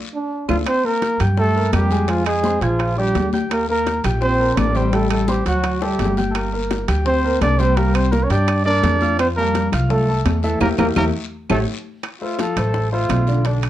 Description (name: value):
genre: Afro-Cuban jazz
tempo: 169 BPM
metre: 4/4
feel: straight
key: D minor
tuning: A4 = 436 Hz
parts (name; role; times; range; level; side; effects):
- breathy trombone; second line; 0.1-11.6 s; F3 to D4; -23 LUFS; right 2 dB; none
- breathy trumpet; melody; 0.5-13.7 s; D4 to D5; -22 LUFS; equal; none
- warm concert grand piano; accompaniment; 0.5-13.7 s; D3 to Ab6; -24 LUFS; left 2 dB; none
- upright bass; bass; 0.5-13.7 s; G1 to G2; -20 LUFS; equal; none
- bongos; percussion; 0.5-13.6 s; none; -28 LUFS; left 5 dB; none
- claves; percussion; 0.5-13.7 s; none; -34 LUFS; right 6 dB; none
- congas; percussion; 0.5-13.7 s; none; -28 LUFS; left 3 dB; none
- guiro; percussion; 0.5-13.7 s; none; -38 LUFS; left 7 dB; none
- timbales; percussion; 0.5-13.7 s; none; -29 LUFS; right 6 dB; none
room: moderate club reverb, RT60 0.6 s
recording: worn, warbling old tape, cassette tape, warbly pitch drift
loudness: -16 LUFS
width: side -12 dB against mid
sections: 0.7-12.0 A section; 12.0-13.7 B section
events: drum fill 0.0-0.7, 5.8-6.3, 10.6-12.0; band accent 0.0-0.7, 10.6-12.0; trumpet solo 12.0-13.7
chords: 0.0 Dm; 0.7 Gm9; 2.1 Fmadd11; 2.8 Bb6; 3.5 Eb6; 4.9 Dadd11/A; 5.6 D; 6.3 Gm; 7.8 Csus2; 9.2 Fmaj9; 10.6 Edim; 11.3 A7; 12.0 Dm7